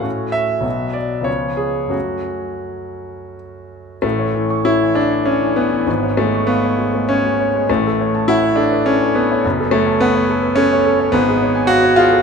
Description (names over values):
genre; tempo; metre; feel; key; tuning
classical, romantic character piece for solo piano; 82-108 BPM; 3/4; rubato; F# minor; A4 = 440 Hz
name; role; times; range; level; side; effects
clear grand piano; solo; 0.0-12.2 s; F#1 to C#6; -14 LUFS; equal; none
room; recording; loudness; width
moderate recital hall reverb, RT60 1.6 s; minimal, uncompressed stereo recording; -14 LUFS; side -5 dB against mid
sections
0.0-4.0 A section; 4.0-12.2 B section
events
none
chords
0.0 F#m/A; 0.6 Bm; 1.3 C#7; 1.9 F#m; 4.0 A; 5.9 C#7/G#; 7.7 F#m/A; 9.4 F#m; 11.1 C#7/G#